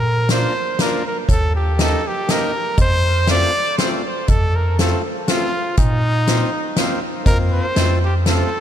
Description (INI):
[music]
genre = alpine folk, alpine dance band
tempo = 121 BPM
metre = 3/4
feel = straight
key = Bb major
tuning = A4 = 440 Hz
[part]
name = bright trumpet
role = melody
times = 0.0-8.6 s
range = Eb4 to D5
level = -21 LUFS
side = equal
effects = none
[part]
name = bell-like tine electric piano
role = bass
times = 0.0-8.4 s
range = Eb2 to Bb2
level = -18 LUFS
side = equal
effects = none
[part]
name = accordion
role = accompaniment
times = 0.3-8.5 s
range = A3 to G4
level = -26 LUFS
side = left 2 dB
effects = none
[part]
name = loose indie drum kit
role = drums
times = 0.3-8.4 s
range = hi-hat, kick drum, snare drum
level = -20 LUFS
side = equal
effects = none
[sound]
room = moderate huge ambient reverb, RT60 4.5 s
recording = dreamy mix soaked in reverb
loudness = -15 LUFS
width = side -10 dB against mid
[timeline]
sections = 0.0-8.6 A section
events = none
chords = 0.0 Bb; 1.3 Eb; 2.8 F; 5.8 Bbsus2; 7.3 Fsus4; 7.8 F